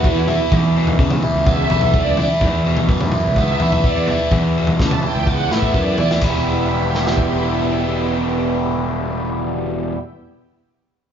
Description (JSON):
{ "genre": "psychedelic rock", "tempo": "126 BPM", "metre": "4/4", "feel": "straight", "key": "E dorian", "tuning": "A4 = 441 Hz", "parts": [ { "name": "string machine, violas", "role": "sustained chords", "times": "0.0-10.0 s", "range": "B3 to A5", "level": "-24 LUFS", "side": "right 3 dB", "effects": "ensemble chorus" }, { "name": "biting overdriven guitar", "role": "riff", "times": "0.0-10.0 s", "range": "E2 to E4", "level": "-19 LUFS", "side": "equal", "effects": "phaser" }, { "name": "crunchy breakbeat drum kit", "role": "drums", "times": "0.0-7.3 s", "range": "crash cymbal, kick drum, snare drum, toms", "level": "-19 LUFS", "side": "equal", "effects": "none" }, { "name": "fuzz picked electric bass", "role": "bass", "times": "0.2-9.9 s", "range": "E1 to C#3", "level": "-22 LUFS", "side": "equal", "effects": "overdrive" } ], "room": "moderate large studio reverb, RT60 0.9 s", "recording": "band playing live in one room, nothing above 7.5 kHz", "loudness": "-15 LUFS", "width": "side -8 dB against mid", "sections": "0.0-6.2 A section; 6.2-10.0 B section", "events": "string machine solo 0.0-6.2; drum fill 5.3-6.2", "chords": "0.0 Esus2; 6.2 Em", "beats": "0.04 | 0.51 0.99 1.46 1.94 | 2.41 2.89 3.36 3.84 | 4.32 4.79 5.27 5.74 | 6.22 6.70 7.17 7.65 | 8.12 8.60 9.08 9.55" }